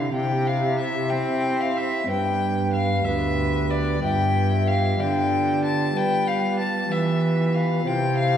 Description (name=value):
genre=classical, baroque-style sonata movement with continuo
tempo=62 BPM (dotted quarters)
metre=12/8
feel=straight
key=C major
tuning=A4 = 440 Hz
part: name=rich violin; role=melody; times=0.0-8.4 s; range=D5 to A5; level=-25 LUFS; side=left 3 dB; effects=none
part: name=pipe organ, principal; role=accompaniment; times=0.0-8.4 s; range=D2 to G4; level=-27 LUFS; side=right 2 dB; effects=none
part: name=rich cello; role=bass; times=0.0-8.4 s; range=D2 to C4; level=-24 LUFS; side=equal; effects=none
part: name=silver concert flute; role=second line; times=0.1-8.4 s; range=B4 to E5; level=-30 LUFS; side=right 2 dB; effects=none
room=wet scoring stage reverb, RT60 1.6 s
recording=heard from further back in the room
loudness=-20 LUFS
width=side -9 dB against mid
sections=0.1-8.4 A section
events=none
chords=0.1 C; 2.1 G; 4.0 G7; 7.9 C